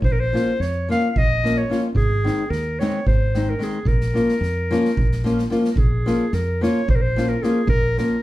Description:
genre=balkan folk, Balkan wedding band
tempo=220 BPM (eighths)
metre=7/8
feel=straight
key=Bb minor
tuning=A4 = 440 Hz
part: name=clear clarinet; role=melody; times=0.0-8.2 s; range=Ab4 to F5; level=-25 LUFS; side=equal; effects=plate reverb
part: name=fingered electric bass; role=bass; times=0.0-8.0 s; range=Ab1 to F2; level=-23 LUFS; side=equal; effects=none
part: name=street-band drum kit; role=percussion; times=0.0-8.0 s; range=kick drum, snare drum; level=-24 LUFS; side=right 1 dB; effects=none
part: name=nylon-string guitar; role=accompaniment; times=0.3-8.2 s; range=Eb3 to F4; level=-21 LUFS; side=left 1 dB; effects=none
room=wet studio ambience, RT60 0.5 s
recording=heard from further back in the room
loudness=-18 LUFS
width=side -16 dB against mid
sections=0.0-5.8 A section; 5.8-8.2 A section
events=none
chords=0.0 Bbm; 2.0 Ab; 3.9 Bbm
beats=| 0.04 0.31 0.59 0.86 1.13 1.41 1.68 | 1.95 2.23 2.50 2.77 3.05 3.32 3.59 | 3.87 4.14 4.41 4.69 4.96 5.23 5.50 | 5.78 6.05 6.32 6.59 6.87 7.14 7.41 | 7.68 7.96

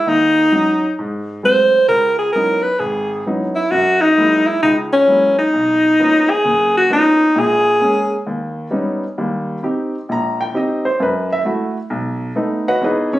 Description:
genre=jazz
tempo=132 BPM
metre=4/4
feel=swing 65% on 8ths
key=unclear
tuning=A4 = 440 Hz
part: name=clear alto saxophone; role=melody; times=0.0-8.3 s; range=Db4 to C5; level=-12 LUFS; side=equal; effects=none
part: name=warm baby grand piano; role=accompaniment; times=0.1-13.2 s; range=F#1 to Bb5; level=-20 LUFS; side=equal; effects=none
room=moderate large studio reverb, RT60 0.9 s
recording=recorded on a phone in the room, studio ambience, compression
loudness=-14 LUFS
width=side -15 dB against mid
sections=0.0-9.2 A section; 9.2-13.2 B section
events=none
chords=0.1 Ebm7; 1.0 Ab7b9; 1.9 Dbm11; 3.7 Gb9; 5.5 Bmaj9#11; 7.4 Bbm7; 8.3 Ebaug7; 9.2 Eb6; 11.0 Gbm7; 11.9 B7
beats=| 0.07 0.52 0.98 1.43 | 1.89 2.35 2.80 3.26 | 3.71 4.17 4.62 5.08 | 5.53 5.99 6.44 6.90 | 7.35 7.81 8.26 8.72 | 9.17 9.63 10.08 10.54 | 10.99 11.45 11.90 12.36 | 12.81

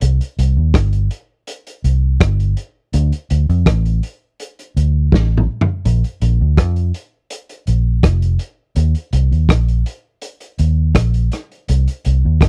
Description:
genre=lovers rock reggae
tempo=82 BPM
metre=4/4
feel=straight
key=unclear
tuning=A4 = 441 Hz
part: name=vintage muted fingered electric bass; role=bass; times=0.0-12.5 s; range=F1 to F2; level=-16 LUFS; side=equal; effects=none
part: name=vintage drum kit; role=drums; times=0.0-12.5 s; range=hi-hat, kick drum, rim click, snare drum, toms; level=-18 LUFS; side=equal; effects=none
room=little or no reverb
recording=dry, close 1970s-style studio recording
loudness=-16 LUFS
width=mono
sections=0.0-12.5 A section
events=drum fill 5.1-5.8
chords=none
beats=| 0.01 0.74 1.47 2.20 | 2.93 3.66 4.39 5.12 | 5.85 6.58 7.31 8.04 | 8.77 9.49 10.22 10.95 | 11.68 12.41

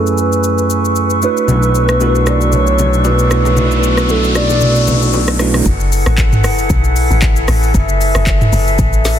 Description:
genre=amapiano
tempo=115 BPM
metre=4/4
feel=swing 55% on 16ths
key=F# minor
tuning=A4 = 440 Hz
part: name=hollow clarinet-like synth lead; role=melody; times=0.0-5.1 s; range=A4 to D5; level=-19 LUFS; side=equal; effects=chorus, low-pass filter, ping-pong delay
part: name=bell-like tine electric piano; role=accompaniment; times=0.0-5.7 s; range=F#2 to D5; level=-18 LUFS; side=right 5 dB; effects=low-pass filter
part: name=mellow flute section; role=sustained chords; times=0.0-9.2 s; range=D4 to E6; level=-18 LUFS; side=left 1 dB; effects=sidechain pumping, low-pass filter
part: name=afro-pop drum kit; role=drums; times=0.1-9.2 s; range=handclaps, hi-hat, kick drum, rim click, shaker, snare drum, toms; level=-17 LUFS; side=equal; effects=soft clipping on snare
part: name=fat analog bass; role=bass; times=1.5-5.6 s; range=B1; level=-14 LUFS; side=equal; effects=none
part: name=congas and bongos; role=percussion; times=1.5-5.6 s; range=none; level=-21 LUFS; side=left 3 dB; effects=none
part: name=riser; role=sound effects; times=2.5-5.7 s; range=none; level=-22 LUFS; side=left 2 dB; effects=none
part: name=deep log drum bass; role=bass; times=5.7-9.2 s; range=F#1 to B1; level=-14 LUFS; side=equal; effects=none
room=little or no reverb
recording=dense, heavily limited modern master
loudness=-10 LUFS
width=side -10 dB against mid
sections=0.0-5.7 A section; 5.7-9.2 B section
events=filter sweep 0.0-5.7; riser 2.5-5.7; kick muted 3.6-5.7; drop 5.7-9.2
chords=0.0 F#m11; 1.2 Bm11; 5.7 F#m11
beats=0.44 0.96 | 1.48 2.01 2.53 3.05 | 3.57 4.09 4.62 5.14 | 5.66 6.18 6.70 7.22 | 7.75 8.27 8.79

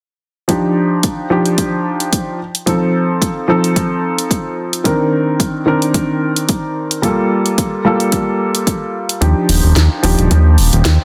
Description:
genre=nu-disco, nu disco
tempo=110 BPM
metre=4/4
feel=swing 55% on 16ths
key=unclear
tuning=A4 = 441 Hz
part: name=dark grand piano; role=accompaniment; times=0.5-11.0 s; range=Eb3 to Bb4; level=-18 LUFS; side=equal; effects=sidechain pumping, slapback echo
part: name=electronic kick drum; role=drums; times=0.5-11.0 s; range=none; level=-21 LUFS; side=equal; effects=overdrive, high-pass filter on kick
part: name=house drum kit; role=drums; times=0.5-11.0 s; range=hi-hat, snare drum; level=-21 LUFS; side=equal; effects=overdrive
part: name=fat analog bass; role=bass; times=9.2-11.0 s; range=Eb1 to Eb2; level=-12 LUFS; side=equal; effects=none
room=light reverb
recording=dense, heavily limited modern master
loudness=-15 LUFS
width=mono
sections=0.5-11.0 A section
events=none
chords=0.5 Ebmaj9; 2.4 F7; 4.9 Cm9; 7.0 Gm9; 9.2 Ebmaj9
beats=| 0.49 1.04 1.58 2.13 | 2.67 3.22 3.76 4.31 | 4.85 5.40 5.95 6.49 | 7.04 7.58 8.13 8.67 | 9.22 9.76 10.31 10.85

